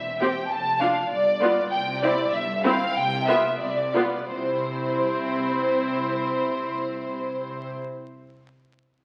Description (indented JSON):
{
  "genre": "quick classical-period movement for string orchestra",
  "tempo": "86-99 BPM",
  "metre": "2/4",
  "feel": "straight",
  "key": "C major",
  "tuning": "A4 = 441 Hz",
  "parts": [
    { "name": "rich studio violin section", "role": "melody", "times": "0.0-7.7 s", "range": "C5 to A5", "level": "-31 LUFS", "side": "equal", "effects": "none" },
    { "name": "dark studio violin section", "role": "second line", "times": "0.0-7.7 s", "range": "C5 to A5", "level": "-29 LUFS", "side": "equal", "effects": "none" },
    { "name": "warm studio cello section", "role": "bass", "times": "0.0-7.7 s", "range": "E2 to C3", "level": "-39 LUFS", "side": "equal", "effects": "none" },
    { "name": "warm studio double bass section", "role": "bass", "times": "0.0-7.7 s", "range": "E1 to C2", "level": "-41 LUFS", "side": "equal", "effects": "none" },
    { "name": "warm studio viola section", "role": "accompaniment", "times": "0.2-7.7 s", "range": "B3 to G4", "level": "-28 LUFS", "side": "equal", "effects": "none" }
  ],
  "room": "wet recital hall reverb, RT60 1.5 s",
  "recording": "very old 78 rpm record, vinyl crackle",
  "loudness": "-24 LUFS",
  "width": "mono",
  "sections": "0.0-4.3 A section; 4.3-7.0 B section",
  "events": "slowing down 1.1-4.3",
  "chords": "0.0 C/E; 0.5 Dm/F; 1.1 G7; 1.7 C; 2.9 Cmaj9; 4.3 C",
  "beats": "| 0.51 1.11 | 1.72 2.32 | 2.95 3.60 | 4.29 4.97 | 5.65 6.34"
}